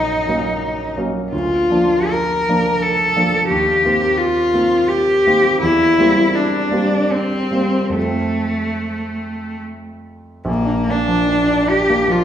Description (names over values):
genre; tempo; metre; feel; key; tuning
classical, romantic duo for cello and grand piano; 70-89 BPM; 3/4; rubato; Bb major; A4 = 440 Hz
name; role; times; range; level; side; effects
rich cello; melody; 0.0-12.2 s; A3 to Bb4; -16 LUFS; left 1 dB; none
warm baby grand piano; accompaniment; 0.0-12.2 s; Bb1 to Eb4; -21 LUFS; right 1 dB; none
room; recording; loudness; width
wet recital hall reverb, RT60 1.7 s; heard from further back in the room; -14 LUFS; side -10 dB against mid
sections
0.0-10.5 A section; 10.5-12.2 B section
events
none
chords
0.0 Gb/Bb; 1.3 Bb/D; 3.5 Cm7/Eb; 5.6 C7/E; 8.0 F; 10.5 Bb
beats
0.63 | 1.33 2.12 2.84 | 3.52 4.20 4.90 | 5.63 6.36 7.13 | 7.96 8.80 9.64 | 10.47 11.29 12.11